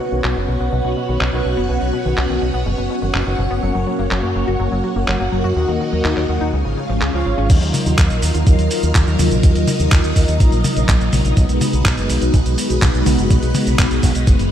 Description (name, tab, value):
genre	italo disco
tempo	124 BPM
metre	4/4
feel	straight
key	Eb minor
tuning	A4 = 440 Hz
part	string machine, full ensemble	sustained chords	0.0-14.5 s	Gb3 to Gb5	-21 LUFS	equal	phaser, ensemble chorus
part	analog pluck	arpeggios	0.0-7.5 s	B2 to Gb4	-26 LUFS	left 3 dB	chorus, tape echo
part	analog synth brass	stabs	0.0-7.5 s	F4 to F#5	-25 LUFS	equal	chorus, tape echo
part	fingered electric bass with an envelope filter	bass	0.1-14.5 s	F#1 to Gb2	-19 LUFS	equal	none
part	dusty soul sampler-style drum kit	drums	0.2-14.5 s	cabasa, crash cymbal, handclaps, hi-hat, toms	-22 LUFS	left 1 dB	low-pass filter on snare, small room ambience, low-pass filter on hats, low-pass filter on cymbals, low-pass filter on perc, low-pass filter on toms
part	electronic kick drum	drums	7.5-14.4 s	none	-14 LUFS	equal	small room ambience
room	light reverb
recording	dark, warm production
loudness	-14 LUFS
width	side -10 dB against mid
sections	0.0-7.5 A section; 7.5-14.5 B section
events	filter sweep on synth arpeggio sound 0.0-7.5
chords	0.0 Bsus2; 3.6 Gb; 5.6 Ebm; 6.5 Db; 7.5 Ebmadd9; 11.4 B6